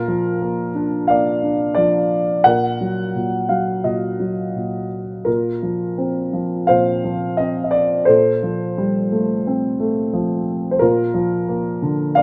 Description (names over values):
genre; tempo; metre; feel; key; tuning
classical, lyrical solo piano; 87 BPM; 4/4; rubato; Bb major; A4 = 442 Hz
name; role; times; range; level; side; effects
dark concert grand piano; solo; 0.0-12.2 s; Bb2 to Gb5; -19 LUFS; equal; none
room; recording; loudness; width
moderate spring reverb, RT60 2.2 s; none; -19 LUFS; mono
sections
0.0-12.2 A section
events
none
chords
0.0 Bb; 2.5 Ebm/Bb; 5.3 Bbsus2; 8.1 Fadd9/Bb; 10.8 Bb